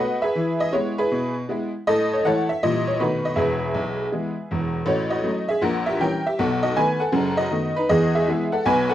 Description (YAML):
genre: jazz, stride piano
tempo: 159 BPM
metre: 4/4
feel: swing 64% on 8ths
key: E major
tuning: A4 = 440 Hz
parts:
  - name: tack piano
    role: solo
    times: 0.0-8.9 s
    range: E1 to G#5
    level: -20 LUFS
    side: equal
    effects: none
room: moderate studio reverb, RT60 0.7 s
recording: worn, warbling old tape, cassette tape, warbly pitch drift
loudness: -20 LUFS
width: side -12 dB against mid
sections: 0.0-4.9 A section; 4.9-8.9 B section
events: none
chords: 0.3 E; 1.9 A; 2.6 A#dim7; 3.0 B7; 3.4 E; 4.9 F#m/A; 5.6 A#dim7; 6.4 B7; 7.9 E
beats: | 0.35 0.73 1.10 1.48 | 1.86 2.23 2.61 2.99 | 3.37 3.74 4.12 4.50 | 4.88 5.25 5.63 6.00 | 6.38 6.76 7.14 7.51 | 7.89 8.27 8.64